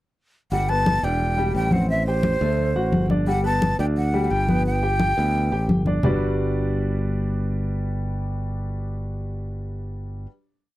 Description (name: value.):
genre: Afro-Cuban jazz.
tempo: 174 BPM.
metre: 4/4.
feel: straight.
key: G major.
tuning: A4 = 440 Hz.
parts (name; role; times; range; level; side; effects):
breathy jazz flute; melody; 0.5-5.7 s; C5 to A5; -24 LUFS; equal; none.
warm baby grand piano; accompaniment; 0.5-10.3 s; G3 to G5; -28 LUFS; left 1 dB; none.
modern bright fingered electric bass; bass; 0.5-10.3 s; E1 to D2; -24 LUFS; equal; none.
congas; percussion; 0.5-6.1 s; none; -23 LUFS; left 1 dB; none.
room: light reverb.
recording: dry, close 1970s-style studio recording.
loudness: -20 LUFS.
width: side -16 dB against mid.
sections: 0.5-6.0 A section; 6.0-8.8 final chord.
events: none.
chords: 0.5 G; 1.2 Em7; 1.9 Am7; 2.6 D7; 3.3 G; 6.0 Gmaj7.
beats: | 0.52 0.86 1.21 1.55 | 1.90 2.24 2.58 2.93 | 3.27 3.62 3.96 4.31 | 4.66 5.00 5.35 5.69 | 6.04 6.38 6.73 7.08 | 7.42 7.76 8.11 8.45.